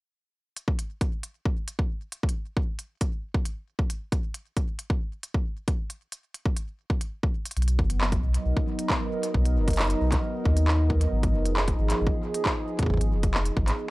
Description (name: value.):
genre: IDM.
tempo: 135 BPM.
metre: 4/4.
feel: straight.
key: unclear.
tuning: A4 = 441 Hz.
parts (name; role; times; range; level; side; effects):
industrial drum kit; drums; 0.6-13.8 s; handclaps, hi-hat; -30 LUFS; equal; tape echo.
electronic kick drum; drums; 0.7-13.7 s; none; -26 LUFS; equal; none.
hollow soft pad; sustained chords; 7.6-13.9 s; F3 to D#5; -30 LUFS; right 1 dB; chorus, sidechain pumping.
warm sub bass; bass; 7.6-13.7 s; F1 to D#2; -24 LUFS; equal; tube saturation.
room: little or no reverb.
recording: dry, gritty hardware recording.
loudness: -24 LUFS.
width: side -20 dB against mid.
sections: 0.5-13.9 A section.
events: none.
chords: 0.5 N.C.; 7.6 Bmaj7; 11.1 Abm6.